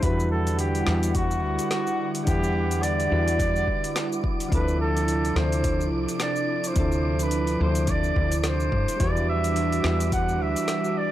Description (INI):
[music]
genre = sunset chillout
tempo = 107 BPM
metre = 4/4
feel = swing 58% on 16ths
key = E minor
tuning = A4 = 445 Hz
[part]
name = warm flugelhorn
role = melody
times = 0.0-11.1 s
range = F#4 to F#5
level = -28 LUFS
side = equal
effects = analog delay
[part]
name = soft electric-piano-like synth keys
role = accompaniment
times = 0.0-11.1 s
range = F3 to F#5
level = -30 LUFS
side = moving between left 2 dB and right 4 dB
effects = chorus, auto-pan
[part]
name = airy breathy pad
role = sustained chords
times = 0.0-11.1 s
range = C3 to F#5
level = -30 LUFS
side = right 1 dB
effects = chorus
[part]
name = woody fretless electric bass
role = bass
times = 0.0-10.5 s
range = C2 to G2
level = -25 LUFS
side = equal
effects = transformer saturation
[part]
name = electronic kick drum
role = drums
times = 0.0-10.3 s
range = none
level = -27 LUFS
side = equal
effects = overdrive
[part]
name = smooth R&B drum kit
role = drums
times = 0.0-10.9 s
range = cabasa, hi-hat, snare drum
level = -32 LUFS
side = equal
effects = none
[part]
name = wind-like tuned noise texture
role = texture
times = 1.1-11.1 s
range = D6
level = -39 LUFS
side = right 3 dB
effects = built-in reverb
[sound]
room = little or no reverb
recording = dry, gritty hardware recording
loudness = -22 LUFS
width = side -13 dB against mid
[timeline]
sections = 0.0-11.1 A section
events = none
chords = 0.0 Em9; 4.5 Dm9; 9.0 Em9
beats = | 0.03 0.59 1.15 1.71 | 2.27 2.83 3.40 3.96 | 4.52 5.08 5.64 6.20 | 6.76 7.32 7.88 8.44 | 9.00 9.56 10.12 10.68